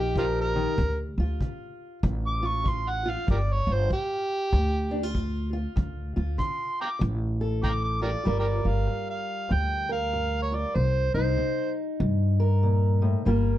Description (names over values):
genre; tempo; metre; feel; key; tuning
acoustic country blues, solo or duo; 96 BPM; 4/4; swing 63% on 8ths; G minor; A4 = 440 Hz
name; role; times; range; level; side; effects
overdriven harmonica; melody; 0.0-11.7 s; F4 to D6; -29 LUFS; right 1 dB; none
fingerpicked steel-string acoustic guitar; accompaniment; 0.0-13.6 s; G2 to Bb4; -31 LUFS; left 1 dB; none
upright bass; bass; 0.0-13.6 s; G1 to G2; -26 LUFS; equal; none
kick drum; drums; 0.2-7.8 s; none; -30 LUFS; equal; none
room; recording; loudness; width
light reverb; dark, warm production; -24 LUFS; side -13 dB against mid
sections
0.0-8.3 A section; 8.3-13.6 B section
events
harmonica solo 0.0-8.3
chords
0.0 Eb; 0.8 Dm; 3.3 G5; 5.8 Dm; 8.3 Gm7; 10.8 Cm7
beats
0.15 | 0.78 1.40 2.02 2.65 | 3.27 3.90 4.52 5.14 | 5.76 6.39 7.01 7.63 | 8.26 8.88 9.51 10.13 | 10.76 11.38 12.01 12.63 | 13.26